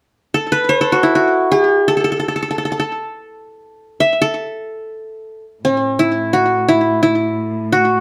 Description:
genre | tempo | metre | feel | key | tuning
arabic | free time | none | none | A maqam rast | A4 = 440 Hz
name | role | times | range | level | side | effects
qanun | melody | 0.3-8.0 s | C4+50c to E5 | -16 LUFS | equal | slapback echo
rich chamber cello section | drone | 5.6-8.0 s | A2 | -27 LUFS | equal | none
room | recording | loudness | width
moderate studio reverb, RT60 0.7 s | none | -16 LUFS | mono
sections
0.0-5.6 A section; 5.6-8.0 B section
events
none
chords
none

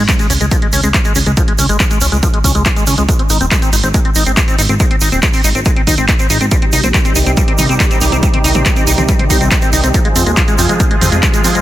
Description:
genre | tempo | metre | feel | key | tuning
uplifting trance | 140 BPM | 4/4 | straight | Ab major | A4 = 440 Hz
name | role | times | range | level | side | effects
liquid acid bass | arpeggios | 0.0-11.6 s | F3 to Eb4 | -17 LUFS | left 2 dB | chorus, sidechain pumping, dub echo
plucky analog bass | bass | 0.0-11.6 s | Eb1 to F2 | -15 LUFS | equal | sidechain pumping
electronic kick drum | drums | 0.1-11.3 s | none | -14 LUFS | equal | none
punchy analog drum machine | drums | 0.1-11.6 s | handclaps, hi-hat, toms | -18 LUFS | right 1 dB | none
tube shaker | percussion | 0.1-11.6 s | none | -22 LUFS | right 5 dB | none
filtered supersaw swell | sustained chords | 6.5-11.6 s | C3 to Ab4 | -18 LUFS | right 1 dB | sidechain pumping
room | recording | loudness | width
light reverb | dense, heavily limited modern master | -10 LUFS | side -14 dB against mid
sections
0.0-11.6 A section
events
none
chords
0.0 Db5; 3.1 Ab; 6.5 Cm; 9.9 Fm

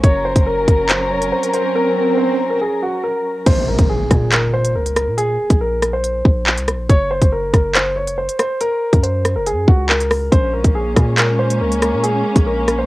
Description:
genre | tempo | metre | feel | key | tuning
hip hop, drill | 140 BPM | 4/4 | half-time | Bb minor | A4 = 440 Hz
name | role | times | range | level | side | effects
dark baby grand piano | melody | 0.0-12.9 s | Gb4 to Db5 | -19 LUFS | equal | none
muted studio string section | sustained chords | 0.0-3.4, 10.3-12.9 s | Gb3 to Bb4 | -22 LUFS | left 1 dB | cassette tape, plate reverb
hard-hitting 808-style bass | bass | 0.0-12.9 s | F1 to Bb2 | -20 LUFS | equal | none
drill drum kit | drums | 0.0-12.8 s | crash cymbal, handclaps, hi-hat, kick drum, rim click | -14 LUFS | equal | cassette tape
swell and impact | sound effects | 1.3-5.2 s | none | -22 LUFS | right 1 dB | none
room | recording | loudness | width
light reverb | home recording on cassette | -14 LUFS | side -18 dB against mid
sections
0.0-3.5 A section; 3.5-12.9 B section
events
swell 1.3-3.5; impact 3.5-5.2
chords
0.0 Gb; 3.5 Bb7(no3); 6.9 Gb; 10.3 Bbm7

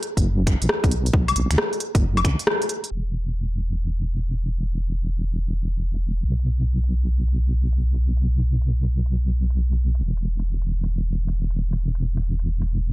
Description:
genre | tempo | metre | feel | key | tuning
UK garage, two-step garage | 135 BPM | 4/4 | swing 66% on 16ths | unclear | A4 = 440 Hz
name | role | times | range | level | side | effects
garage drum kit | drums | 0.0-12.7 s | crash cymbal, finger snaps, hi-hat, rim click, woodblock | -23 LUFS | left 1 dB | low-pass filter on hats, low-pass filter on snare, low-pass filter on perc, low-pass filter on cymbals, low-pass filter on room
deep soft wobble bass | bass | 0.2-12.9 s | E1 to D2 | -21 LUFS | equal | chorus, sidechain pumping
electronic kick drum | drums | 0.2-2.4 s | none | -21 LUFS | equal | none
room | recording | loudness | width
little or no reverb | dark, warm production, low-pass filter | -20 LUFS | side -19 dB against mid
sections
0.0-2.9 A section; 2.9-12.9 B section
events
break 2.5-2.9; band accent 2.5; filter sweep 2.9-12.9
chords
none

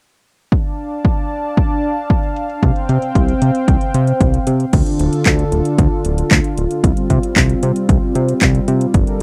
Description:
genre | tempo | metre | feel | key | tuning
italo disco | 114 BPM | 4/4 | straight | unclear | A4 = 440 Hz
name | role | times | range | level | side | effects
warm analog pad | sustained chords | 0.5-9.2 s | D3 to A5 | -22 LUFS | equal | chorus
electronic kick drum | drums | 0.5-9.0 s | none | -18 LUFS | equal | overdrive
house drum kit | drums | 0.5-9.2 s | crash cymbal, handclaps, hi-hat | -22 LUFS | equal | overdrive, low-pass filter on hats, low-pass filter on cymbals, low-pass filter on snare, low-pass filter on room
fat analog bass | bass | 2.6-9.0 s | D1 to C3 | -19 LUFS | equal | tube saturation
room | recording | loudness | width
little or no reverb | dry, close 1970s-style studio recording | -16 LUFS | mono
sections
0.5-4.7 A section; 4.7-9.2 B section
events
none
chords
0.5 Dm; 2.6 Csus4; 4.7 Dm; 6.8 Csus4

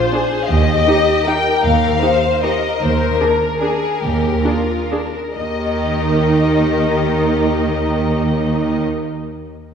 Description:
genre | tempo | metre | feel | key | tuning
classical, orchestral ballroom waltz | 126-167 BPM | 3/4 | rubato | Eb major | A4 = 440 Hz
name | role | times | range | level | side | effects
rich symphonic violin section | melody | 0.0-8.8 s | Bb4 to G5 | -21 LUFS | left 4 dB | none
rich studio violin section | second line | 0.0-8.8 s | D4 to C5 | -21 LUFS | left 4 dB | none
warm symphonic viola section | accompaniment | 0.1-8.8 s | Eb3 to Ab4 | -21 LUFS | right 2 dB | none
warm studio double bass section | bass | 0.5-8.8 s | Eb2 | -24 LUFS | right 4 dB | none
warm symphonic cello section | bass | 0.5-8.8 s | Eb2 | -21 LUFS | right 2 dB | none
room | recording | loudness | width
wet scoring stage reverb, RT60 2.0 s | heard from further back in the room | -14 LUFS | side -7 dB against mid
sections
0.0-5.4 A section; 5.4-8.1 B section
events
slowing down 2.2-5.4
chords
0.5 Eb; 2.8 Bb7/Eb; 5.4 Eb

